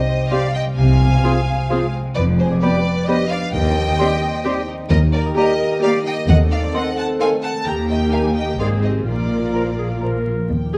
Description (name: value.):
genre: cinematic, playful, whimsical film cue.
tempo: 130 BPM.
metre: 3/4.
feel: straight.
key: C minor, Eb major from 4.9 s.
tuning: A4 = 439 Hz.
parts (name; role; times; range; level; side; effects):
rich studio violin section; melody; 0.0-10.8 s; C5 to Bb5; -28 LUFS; equal; none.
warm studio violin section; second line; 0.0-10.0 s; Ab4 to G5; -30 LUFS; equal; none.
concert harp; arpeggios; 0.0-10.8 s; Ab2 to C6; -26 LUFS; equal; none.
bright clarinet; second line; 0.3-10.5 s; G4 to Bb4; -29 LUFS; equal; none.
silver concert flute; second line; 0.3-10.1 s; Bb5 to C6; -32 LUFS; equal; none.
dark bassoon; accompaniment; 0.3-10.2 s; Eb3 to G3; -30 LUFS; equal; none.
rich studio viola section; accompaniment; 0.3-10.8 s; Bb3 to A4; -28 LUFS; equal; none.
mellow French horn section; sustained chords; 0.3-10.3 s; Bb3 to A4; -27 LUFS; equal; none.
dark studio cello section; bass; 0.8-10.8 s; Eb2 to C3; -24 LUFS; equal; none.
warm studio double bass section; bass; 0.8-10.8 s; F1 to Eb2; -25 LUFS; equal; none.
room: moderate scoring stage reverb, RT60 1.5 s.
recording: close, detailed microphones, vinyl crackle, lossy compression artefacts.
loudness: -18 LUFS.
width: mono.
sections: 0.0-10.5 A section.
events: none.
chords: 0.0 Cm; 0.8 Fm/C; 2.2 G7/F; 3.5 Cm/Eb; 4.9 Eb; 6.3 Ebdim7; 7.7 Eb; 8.6 Ab; 9.1 Bb.